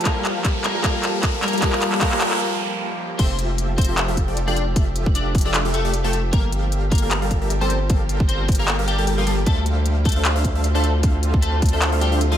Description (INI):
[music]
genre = future bass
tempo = 153 BPM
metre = 4/4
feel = swing 55% on 16ths, half-time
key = unclear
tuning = A4 = 441 Hz
[part]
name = dark baby grand piano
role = accompaniment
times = 0.0-3.2 s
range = G3 to A5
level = -26 LUFS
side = right 1 dB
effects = analog chorus, sidechain pumping, ping-pong delay
[part]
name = shimmering ambient pad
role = sustained chords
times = 0.0-12.4 s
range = D3 to E5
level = -32 LUFS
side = right 1 dB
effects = chorus, built-in reverb, vintage 12-bit sampler grit, sidechain pumping
[part]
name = saturated sub bass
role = bass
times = 0.0-12.4 s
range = F1 to D2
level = -22 LUFS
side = equal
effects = sidechain pumping, high-pass filter
[part]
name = trap drum kit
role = drums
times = 0.0-12.3 s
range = crash cymbal, handclaps, hi-hat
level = -24 LUFS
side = left 1 dB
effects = studio reverb
[part]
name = riser and noise sweep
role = sound effects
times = 0.0-3.2 s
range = none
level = -29 LUFS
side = right 2 dB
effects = none
[part]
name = electric guitar at the edge of break-up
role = melody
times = 0.1-12.4 s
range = F3 to D5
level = -28 LUFS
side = left 2 dB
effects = analog chorus, sidechain pumping, ping-pong delay
[part]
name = supersaw stab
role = riff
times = 0.1-12.4 s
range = F3 to A5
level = -26 LUFS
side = equal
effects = sidechain pumping, low-pass filter, ping-pong delay
[part]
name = electronic kick drum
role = drums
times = 0.1-11.7 s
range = none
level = -20 LUFS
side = equal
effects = studio reverb
[sound]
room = moderate plate reverb, RT60 1.4 s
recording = dreamy mix soaked in reverb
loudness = -18 LUFS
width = side -10 dB against mid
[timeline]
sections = 0.0-3.2 A section; 3.2-12.4 B section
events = build-up 0.0-3.2; drum fill 0.0-2.4; riser 0.0-2.4; noise sweep 1.6-3.2; break 2.4-3.2; drop 3.2-12.4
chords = 0.1 Gm9; 3.2 Fmaj9; 6.3 Gm9; 9.5 Dm7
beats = | 0.06 0.45 0.84 1.23 | 1.62 2.02 2.41 2.80 | 3.19 3.58 3.98 4.37 | 4.76 5.15 5.54 5.94 | 6.33 6.72 7.11 7.51 | 7.90 8.29 8.68 9.07 | 9.47 9.86 10.25 10.64 | 11.04 11.43 11.82 12.21